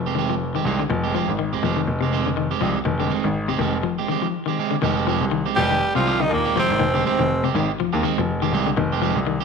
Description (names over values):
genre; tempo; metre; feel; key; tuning
afrobeat; 122 BPM; 4/4; swing 55% on 16ths; F dorian; A4 = 440 Hz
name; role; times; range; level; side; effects
electric guitar at the edge of break-up; arpeggios; 0.0-9.4 s; C3 to F3; -25 LUFS; left 8 dB; spring reverb
clear grand piano; bass; 0.0-9.4 s; F1 to Eb2; -24 LUFS; equal; none
electric guitar at the edge of break-up; stabs; 0.1-9.4 s; Eb3 to G4; -25 LUFS; right 10 dB; none
growling tenor saxophone; melody; 5.6-7.5 s; Bb3 to G4; -22 LUFS; right 1 dB; none
raspy baritone saxophone; second line; 5.6-7.5 s; Bb2 to G3; -30 LUFS; left 9 dB; none
warm trombone; second line; 5.6-7.5 s; Bb2 to G3; -29 LUFS; right 10 dB; none
room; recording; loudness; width
moderate echo chamber reverb, RT60 1.3 s; 1960s-style stereo with parts hard left and right; -19 LUFS; side -5 dB against mid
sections
0.0-4.8 A section; 4.8-9.4 B section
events
none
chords
0.0 Fm9